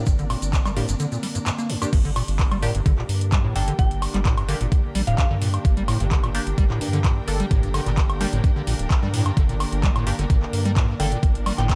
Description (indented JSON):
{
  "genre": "acid house",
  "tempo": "129 BPM",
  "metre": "4/4",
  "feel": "straight",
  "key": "G minor",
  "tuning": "A4 = 439 Hz",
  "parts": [
    { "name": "warbly tape-like pad", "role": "sustained chords", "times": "0.0-11.8 s", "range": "D3 to Bb4", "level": "-36 LUFS", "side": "equal", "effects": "chorus, built-in reverb, sidechain pumping" },
    { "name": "acid bass, square", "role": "riff", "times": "0.0-11.8 s", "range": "F2 to Bb3", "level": "-28 LUFS", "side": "equal", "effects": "overdrive, lush chorus, sidechain pumping" },
    { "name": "band-passed chord stab", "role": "stabs", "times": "0.0-11.1 s", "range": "Bb3 to A4", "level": "-35 LUFS", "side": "equal", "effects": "phaser, analog chorus, tape echo" },
    { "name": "rich studio string section", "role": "texture", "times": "0.0-11.8 s", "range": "D4 to G5", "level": "-38 LUFS", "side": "equal", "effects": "sidechain pumping" },
    { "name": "round analog bass", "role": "bass", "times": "0.1-11.8 s", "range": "D1 to G2", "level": "-28 LUFS", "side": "equal", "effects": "sidechain pumping" },
    { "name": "booming analog drum machine", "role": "drums", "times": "0.1-11.8 s", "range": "crash cymbal, handclaps, hi-hat, woodblock", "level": "-32 LUFS", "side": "equal", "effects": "none" },
    { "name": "electronic kick drum", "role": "drums", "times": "0.1-11.8 s", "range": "none", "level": "-22 LUFS", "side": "equal", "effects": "overdrive" },
    { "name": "tube shaker", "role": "percussion", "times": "0.1-1.9 s", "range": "none", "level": "-39 LUFS", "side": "equal", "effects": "none" },
    { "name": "soft synth bell", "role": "melody", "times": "3.6-5.3, 11.0-11.7 s", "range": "F5 to G5", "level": "-34 LUFS", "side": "equal", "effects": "chorus, vintage 12-bit sampler grit, tape echo" }
  ],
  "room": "little or no reverb",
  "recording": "none",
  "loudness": "-22 LUFS",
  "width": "mono",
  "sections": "0.0-1.9 A section; 1.9-11.8 B section",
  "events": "break 1.0-1.9; drop 1.9-11.8",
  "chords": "0.0 Gm"
}